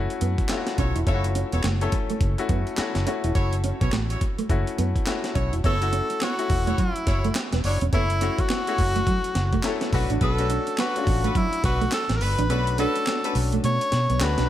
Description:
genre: R&B, new jack swing.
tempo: 105 BPM.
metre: 4/4.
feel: swing 61% on 16ths.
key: unclear.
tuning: A4 = 440 Hz.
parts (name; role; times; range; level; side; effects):
clear baby grand piano; accompaniment; 0.0-14.5 s; A3 to A4; -30 LUFS; left 6 dB; none.
vintage muted fingered electric bass; bass; 0.0-14.5 s; E1 to B2; -24 LUFS; equal; none.
breakbeat sampler-style drum kit; drums; 0.1-14.5 s; handclaps, hi-hat, kick drum, snare drum; -26 LUFS; equal; gated reverb.
mellow electric guitar; riff; 0.2-14.5 s; F#3 to E4; -31 LUFS; right 6 dB; ensemble chorus.
warm horn section; stabs; 0.8-13.4 s; D4 to C#5; -34 LUFS; left 1 dB; tape echo.
clear tenor saxophone; melody; 5.7-14.5 s; D4 to C#5; -26 LUFS; equal; none.
room: small room ambience.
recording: none.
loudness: -21 LUFS.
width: side -12 dB against mid.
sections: 0.0-5.6 A section; 5.6-14.5 B section.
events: kick muted 12.5-14.5.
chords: 0.0 F#m7; 9.9 Bm7.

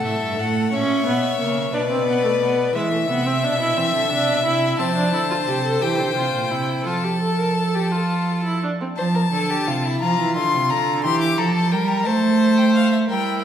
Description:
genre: classical, baroque-style fugue for string quartet.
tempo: 58 BPM (dotted quarters).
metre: 6/8.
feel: straight.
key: F major from 4.8 s.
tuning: A4 = 440 Hz.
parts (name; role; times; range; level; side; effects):
bright violin; melody; 0.0-13.4 s; D5 to D6; -24 LUFS; left 5 dB; none.
clear violin; second line; 0.0-13.4 s; E4 to E5; -25 LUFS; left 2 dB; none.
rich viola; accompaniment; 0.0-8.9, 13.1-13.4 s; G#3 to Bb4; -24 LUFS; right 2 dB; none.
warm cello; bass; 0.0-13.4 s; G2 to A3; -22 LUFS; right 2 dB; none.
room: wet concert hall reverb, RT60 1.7 s.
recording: recorded in a church or concert hall.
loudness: -18 LUFS.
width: side -9 dB against mid.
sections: 0.0-9.0 A section; 9.0-13.1 B section.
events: none.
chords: 0.0 F#m; 0.7 A#dim; 1.7 Bm; 2.7 E7; 3.8 Cmaj9; 4.8 F; 5.8 C7; 6.9 F; 10.0 Bb; 11.0 C7/E (rootless); 12.1 F/A (rootless).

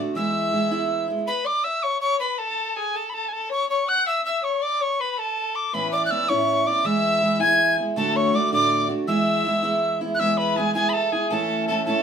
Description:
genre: celtic folk, Celtic jig.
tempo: 108 BPM (dotted quarters).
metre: 6/8.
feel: straight.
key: E mixolydian.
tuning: A4 = 442 Hz.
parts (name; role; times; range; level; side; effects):
picked steel-string acoustic guitar; accompaniment; 0.0-1.3, 5.7-12.0 s; D2 to F#4; -23 LUFS; right 3 dB; none.
bright wooden whistle; melody; 0.2-12.0 s; G#5 to G#6; -23 LUFS; right 1 dB; none.
warm fiddle; second line; 0.2-12.0 s; G#4 to G#5; -27 LUFS; left 7 dB; none.
room: moderate studio reverb, RT60 0.6 s.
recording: minimal, uncompressed stereo recording.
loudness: -20 LUFS.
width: side -7 dB against mid.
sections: 0.0-1.3 A section; 1.3-10.2 A section; 10.2-12.0 B section.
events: none.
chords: 0.2 E; 1.3 N.C.; 5.7 Aadd9; 6.8 E; 8.0 D; 9.1 E; 11.3 A/E.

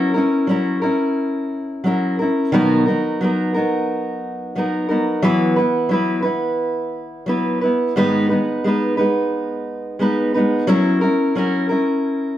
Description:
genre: pop.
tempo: 88 BPM.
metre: 4/4.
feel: straight.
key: B major.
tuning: A4 = 436 Hz.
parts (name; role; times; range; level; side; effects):
fingerpicked steel-string acoustic guitar; solo; 0.0-12.4 s; G#2 to B4; -17 LUFS; equal; none.
room: wet studio reverb, RT60 0.8 s.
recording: heard from further back in the room, faint mains hum.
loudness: -17 LUFS.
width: side -12 dB against mid.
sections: 0.0-12.4 A section.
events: none.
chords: 0.0 F#7; 2.5 Bmaj7; 5.2 Esus2; 8.0 G#m; 10.7 F#7.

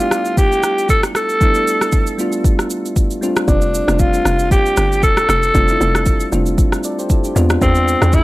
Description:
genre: amapiano.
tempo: 116 BPM.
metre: 4/4.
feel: swing 55% on 16ths.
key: unclear.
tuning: A4 = 441 Hz.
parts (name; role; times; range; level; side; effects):
growling alto saxophone; melody; 0.0-8.2 s; C4 to A4; -16 LUFS; equal; analog delay.
soft electric-piano-like synth keys; accompaniment; 0.0-8.2 s; G3 to D5; -21 LUFS; equal; chorus.
afro-pop drum kit; drums; 0.0-8.2 s; kick drum, rim click, shaker; -16 LUFS; equal; none.
hollow log drum bass; bass; 3.5-8.2 s; F1 to E2; -17 LUFS; equal; none.
room: little or no reverb.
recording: dry, gritty hardware recording.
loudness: -13 LUFS.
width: side -18 dB against mid.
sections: 0.0-8.2 A section.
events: none.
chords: 0.0 G7; 3.2 F69; 7.4 E7b9b13.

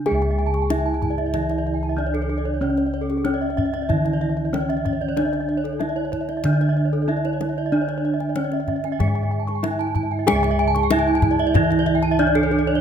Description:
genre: Balinese gamelan.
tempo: 94 BPM.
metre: 4/4.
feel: straight.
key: C# pelog.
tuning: A4 = 440 Hz.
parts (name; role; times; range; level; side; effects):
gamelan-type bronze metallophone; melody; 0.0-12.8 s; C#4 to G#4-30c; -24 LUFS; right 1 dB; tape echo.
gamelan-type bronze metallophone; accompaniment; 0.0-12.8 s; C#3 to G#3-30c; -30 LUFS; right 2 dB; none.
gamelan-type bossed gongs; bass; 0.0-12.8 s; C#2 to G#4-30c; -24 LUFS; equal; none.
gamelan-type bronze metallophone; arpeggios; 0.1-12.7 s; G#4-30c to C#6; -27 LUFS; left 4 dB; none.
gamelan-type bronze metallophone; arpeggios; 0.1-12.8 s; A4-20c to A5-20c; -28 LUFS; right 7 dB; none.
kendang; percussion; 0.1-12.4 s; none; -26 LUFS; left 3 dB; none.
room: moderate recital hall reverb, RT60 1.4 s.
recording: close, detailed microphones.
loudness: -19 LUFS.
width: side -8 dB against mid.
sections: 0.1-12.8 A section.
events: none.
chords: none.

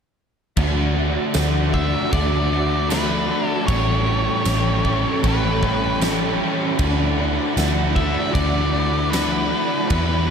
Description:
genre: rock, shoegaze and dream pop.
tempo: 77 BPM.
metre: 4/4.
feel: straight.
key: D major.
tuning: A4 = 440 Hz.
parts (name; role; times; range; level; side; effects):
string machine, violas; sustained chords; 0.5-10.3 s; E4 to B5; -28 LUFS; equal; ensemble chorus.
crunchy overdriven guitar; riff; 0.6-10.3 s; A2 to G4; -25 LUFS; left 11 dB; analog chorus.
overdriven electric guitar; riff; 0.6-10.3 s; A2 to G4; -24 LUFS; right 8 dB; reverse reverb.
vintage muted picked electric bass; bass; 0.6-10.3 s; A1 to E2; -22 LUFS; equal; none.
huge arena drum kit; drums; 0.6-10.1 s; crash cymbal, kick drum, snare drum; -25 LUFS; equal; none.
tambourine; percussion; 1.3-9.3 s; none; -32 LUFS; right 18 dB; none.
octave-fuzz lead guitar; melody; 1.7-10.3 s; B4 to E5; -26 LUFS; equal; distortion, analog delay.
room: moderate huge ambient reverb, RT60 9.1 s.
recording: dreamy mix soaked in reverb.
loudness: -18 LUFS.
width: side -7 dB against mid.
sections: 0.6-10.3 A section.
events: none.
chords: 0.6 D69; 3.7 A9; 6.8 D69.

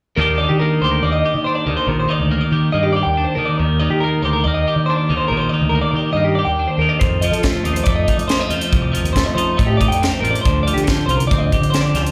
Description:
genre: math rock and midwest emo.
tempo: 140 BPM.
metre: 4/4.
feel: straight.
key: Eb lydian.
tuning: A4 = 439 Hz.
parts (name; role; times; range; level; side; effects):
twelve-string electric guitar; accompaniment; 0.2-12.1 s; Eb2 to G4; -22 LUFS; equal; none.
clean electric guitar; arpeggios; 0.2-12.1 s; G4 to G5; -23 LUFS; equal; none.
growling fingered electric bass; bass; 0.2-12.0 s; A1 to F3; -23 LUFS; equal; overdrive.
crisp fusion drum kit; drums; 7.0-12.1 s; hi-hat, kick drum, snare drum; -22 LUFS; equal; none.
room: light reverb.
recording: live gig heard through the venue's PA, club reverb.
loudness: -17 LUFS.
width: mono.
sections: 0.2-12.1 A section.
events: none.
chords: 0.2 Ebmaj7; 7.0 F9.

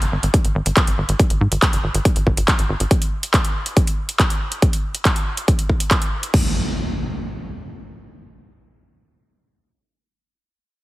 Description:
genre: uplifting trance.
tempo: 140 BPM.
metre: 4/4.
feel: straight.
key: unclear.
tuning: A4 = 438 Hz.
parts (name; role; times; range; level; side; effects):
tight sequencer bass; bass; 0.0-2.9 s; F#1 to G#2; -20 LUFS; equal; sidechain pumping.
big-room dance drum kit; drums; 0.0-6.4 s; crash cymbal, handclaps, hi-hat; -22 LUFS; equal; overdrive, small room ambience.
electronic kick drum; drums; 0.3-6.4 s; none; -17 LUFS; equal; overdrive, small room ambience.
impact; sound effects; 6.3-10.1 s; none; -25 LUFS; equal; none.
room: little or no reverb.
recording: heavily compressed radio sound, multiband compression.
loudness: -16 LUFS.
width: side -18 dB against mid.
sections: 0.0-6.3 A section; 6.3-9.8 B section.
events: filter sweep on analog synth bass 0.0-2.9.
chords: none.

